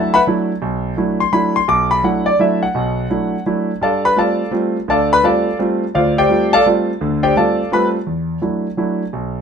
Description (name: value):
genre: jazz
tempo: 169 BPM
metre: 3/4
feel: swing 65% on 8ths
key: E phrygian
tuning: A4 = 439 Hz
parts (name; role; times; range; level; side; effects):
- warm concert grand piano; solo; 0.0-9.4 s; B1 to D6; -14 LUFS; equal; none
room: moderate studio reverb, RT60 0.7 s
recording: minimal, uncompressed stereo recording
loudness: -14 LUFS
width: side -7 dB against mid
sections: 0.0-8.1 A section; 8.1-9.4 B section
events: none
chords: 0.0 E9sus4; 3.8 G9sus4; 8.1 E9sus4